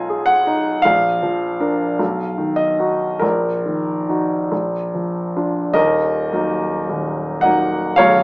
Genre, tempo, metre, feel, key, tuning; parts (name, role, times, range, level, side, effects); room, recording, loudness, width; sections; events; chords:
classical, romantic nocturne for solo piano; 46-56 BPM; 4/4; rubato; Eb minor; A4 = 440 Hz
clear grand piano; solo; 0.0-8.2 s; B0 to Bb5; -16 LUFS; equal
moderate studio reverb, RT60 0.6 s; small speaker sound; -16 LUFS; side -28 dB against mid
0.0-5.7 A section; 5.7-8.2 B section
0.0 Fm7b5/Cb; 0.8 Bb; 2.0 B; 3.2 Ebm/Bb; 4.5 Bb; 5.7 Ebm